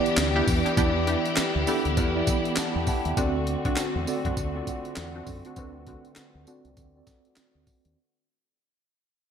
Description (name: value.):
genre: R&B, new jack swing.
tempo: 100 BPM.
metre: 4/4.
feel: swing 60% on 16ths.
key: unclear.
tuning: A4 = 438 Hz.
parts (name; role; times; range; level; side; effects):
mellow tine electric piano; accompaniment; 0.0-8.0 s; B3 to B5; -29 LUFS; right 2 dB; fast stereo tremolo, low-pass filter.
warm studio string section; sustained chords; 0.0-7.9 s; D3 to G4; -30 LUFS; left 1 dB; low-pass filter.
breakbeat sampler-style drum kit; drums; 0.1-8.0 s; handclaps, hi-hat, kick drum, snare drum, tambourine; -28 LUFS; left 1 dB; gated reverb.
deep dub fingered electric bass; bass; 0.2-7.9 s; C2 to F#2; -30 LUFS; left 1 dB; none.
funky polysynth comp; stabs; 0.4-6.7 s; C4 to G4; -32 LUFS; equal; chorus, low-pass filter.
room: wet plate reverb, RT60 1.7 s, digital ambience.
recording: bright 1980s-style digital production.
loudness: -23 LUFS.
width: side -8 dB against mid.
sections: 0.0-8.0 A section.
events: fade-out 0.0-8.0; filter sweep 0.0-8.0.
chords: 0.0 Em7; 3.2 D7.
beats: 0.17 | 0.77 1.37 1.97 2.57 | 3.17 3.77 4.37 4.97 | 5.57 6.17 6.77 7.37.